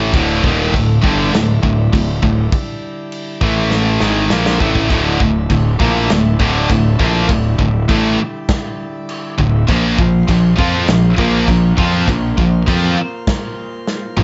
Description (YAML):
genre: heavy metal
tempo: 100 BPM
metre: 4/4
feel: straight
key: D minor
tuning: A4 = 439 Hz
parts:
  - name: pipe organ, plenum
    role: sustained chords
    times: 0.0-14.2 s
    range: D3 to C5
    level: -29 LUFS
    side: equal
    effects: none
  - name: distorted electric guitar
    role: riff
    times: 0.0-14.2 s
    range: D2 to F4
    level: -19 LUFS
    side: equal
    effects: overdrive
  - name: scooped high-gain guitar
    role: riff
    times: 0.0-14.2 s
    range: D2 to F4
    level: -21 LUFS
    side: equal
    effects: distortion
  - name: fuzz picked electric bass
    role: bass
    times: 0.0-14.2 s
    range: D1 to F2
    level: -21 LUFS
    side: equal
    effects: overdrive
  - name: modern studio drum kit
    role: drums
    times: 0.1-14.2 s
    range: china cymbal, crash cymbal, kick drum, snare drum, toms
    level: -21 LUFS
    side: equal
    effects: none
room: light reverb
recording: nothing above 7.7 kHz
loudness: -15 LUFS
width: mono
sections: 0.0-4.9 A section; 4.9-14.2 B section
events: drum fill 3.7-4.9, 13.9-14.2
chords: 0.0 D5; 3.4 A5; 4.0 Dm; 9.7 Bb5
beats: | 0.12 0.72 1.32 1.92 | 2.52 3.12 3.71 4.31 | 4.91 5.51 6.10 6.70 | 7.30 7.89 8.49 9.09 | 9.69 10.28 10.88 11.48 | 12.08 12.68 13.27 13.87